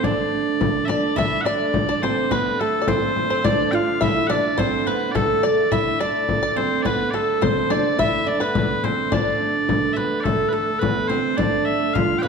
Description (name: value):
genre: medieval dance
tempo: 106 BPM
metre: 2/4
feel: straight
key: unclear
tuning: A4 = 440 Hz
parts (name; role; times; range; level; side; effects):
- loud bright bagpipes; melody; 0.0-12.3 s; A4 to G5; -24 LUFS; left 1 dB; none
- oud; second line; 0.0-12.3 s; A3 to F4; -23 LUFS; right 4 dB; none
- warm hurdy-gurdy; drone; 0.0-12.3 s; D3 to A3; -29 LUFS; right 2 dB; none
- frame drum; percussion; 0.0-12.3 s; none; -25 LUFS; left 4 dB; none
- bluegrass banjo; second line; 0.9-9.9 s; A4 to E5; -28 LUFS; left 4 dB; none
room: wet scoring stage reverb, RT60 1.8 s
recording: dark, warm production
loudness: -18 LUFS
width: side -5 dB against mid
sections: 0.0-1.2 A section; 1.2-10.3 A section; 10.3-12.3 B section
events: none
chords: none